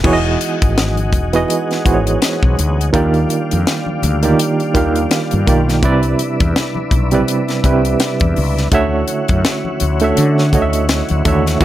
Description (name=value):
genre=R&B, neo-soul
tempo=83 BPM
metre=4/4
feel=swing 59% on 16ths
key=unclear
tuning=A4 = 440 Hz
part: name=barky reed electric piano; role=accompaniment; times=0.0-11.6 s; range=C3 to E#5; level=-16 LUFS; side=right 3 dB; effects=overdrive, fast tremolo, plate reverb
part: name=tonewheel organ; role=sustained chords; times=0.0-11.6 s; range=G3 to F#4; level=-24 LUFS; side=left 2 dB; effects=chorus vibrato, wide subtle chorus, plate reverb
part: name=mellow fretless electric bass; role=bass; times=0.0-11.6 s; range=E1 to D3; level=-17 LUFS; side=left 1 dB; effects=none
part: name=tight funk drum kit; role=drums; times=0.0-11.6 s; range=crash cymbal, hi-hat, kick drum, snare drum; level=-18 LUFS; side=left 1 dB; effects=none
part: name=congas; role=percussion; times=0.1-11.6 s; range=none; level=-29 LUFS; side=left 3 dB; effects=none
room=light reverb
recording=none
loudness=-13 LUFS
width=side -13 dB against mid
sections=0.0-11.6 A section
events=none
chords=0.0 Emaj9; 2.9 D#maj9; 5.8 Cmaj9; 8.7 Dmaj9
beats=| 0.04 0.77 1.49 2.21 | 2.93 3.66 4.38 5.10 | 5.83 6.55 7.27 7.99 | 8.72 9.44 10.16 10.89 | 11.61